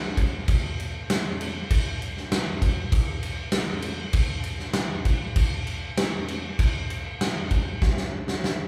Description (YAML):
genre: rock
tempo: 98 BPM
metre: 4/4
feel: straight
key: none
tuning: none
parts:
  - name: big rock drum kit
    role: drums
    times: 0.2-8.6 s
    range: crash cymbal, kick drum, snare drum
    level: -26 LUFS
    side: equal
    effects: none
room: light reverb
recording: band playing live in one room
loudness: -26 LUFS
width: mono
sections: 0.0-8.7 A section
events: drum fill 7.8-8.7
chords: none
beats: 0.48 1.09 | 1.70 2.31 2.93 3.54 | 4.15 4.76 5.37 5.99 | 6.60 7.21 7.82 8.44